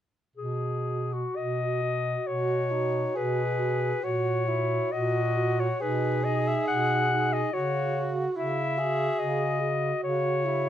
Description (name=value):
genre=classical, lyrical piece for single-reed quartet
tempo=58-73 BPM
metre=4/4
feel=rubato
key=B major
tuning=A4 = 440 Hz
part: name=clear clarinet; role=melody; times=0.4-10.7 s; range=F#4 to F#5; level=-28 LUFS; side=left 5 dB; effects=none
part: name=warm bass clarinet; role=bass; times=0.4-10.7 s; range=A#2 to C#3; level=-30 LUFS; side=right 2 dB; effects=none
part: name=mellow alto saxophone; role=second line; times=0.9-10.7 s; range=D#4 to F#4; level=-33 LUFS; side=right 6 dB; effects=none
part: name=mellow tenor saxophone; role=accompaniment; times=2.3-10.7 s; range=D#4 to G#4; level=-32 LUFS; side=equal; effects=none
room=light reverb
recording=none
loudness=-25 LUFS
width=side -11 dB against mid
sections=0.4-10.7 A section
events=none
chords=0.4 B; 4.0 F#/A#; 5.8 B; 7.5 F#5/C#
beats=| 0.36 1.36 2.27 3.15 | 4.03 4.91 5.80 6.67 | 7.53 8.36 9.19 10.03